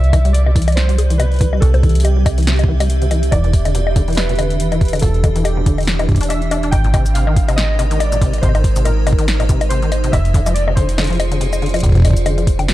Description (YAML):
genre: IDM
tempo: 141 BPM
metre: 4/4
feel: swing 56% on 16ths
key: C major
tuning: A4 = 440 Hz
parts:
  - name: warbly lo-fi synth keys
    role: melody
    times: 0.0-12.7 s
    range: G4 to G5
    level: -25 LUFS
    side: right 1 dB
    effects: chorus, tape echo
  - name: icy glass pad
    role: sustained chords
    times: 0.0-12.7 s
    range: C3 to E5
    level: -25 LUFS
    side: right 1 dB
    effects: chorus, built-in reverb
  - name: metallic FM bass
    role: bass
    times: 0.0-12.7 s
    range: E1 to C2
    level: -16 LUFS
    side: equal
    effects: none
  - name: electro analog drum machine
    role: drums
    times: 0.0-12.7 s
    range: bongos, hi-hat, shaker, snare drum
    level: -22 LUFS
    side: left 4 dB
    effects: none
  - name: deep acid bass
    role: arpeggios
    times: 0.1-12.7 s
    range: Bb2 to D4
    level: -23 LUFS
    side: left 2 dB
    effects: analog chorus
  - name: electronic kick drum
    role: drums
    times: 0.1-12.6 s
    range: none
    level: -14 LUFS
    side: equal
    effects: overdrive
room: light reverb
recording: dark, warm production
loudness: -13 LUFS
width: side -15 dB against mid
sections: 0.0-12.7 A section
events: none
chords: 0.0 C; 3.3 Em7; 6.7 Abadd9; 10.1 Fm6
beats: 0.34 0.77 1.20 | 1.62 2.05 2.47 2.90 | 3.32 3.75 4.17 4.60 | 5.03 5.45 5.88 6.30 | 6.73 7.15 7.58 8.00 | 8.43 8.86 9.28 9.71 | 10.13 10.56 10.98 11.41 | 11.83 12.26 12.68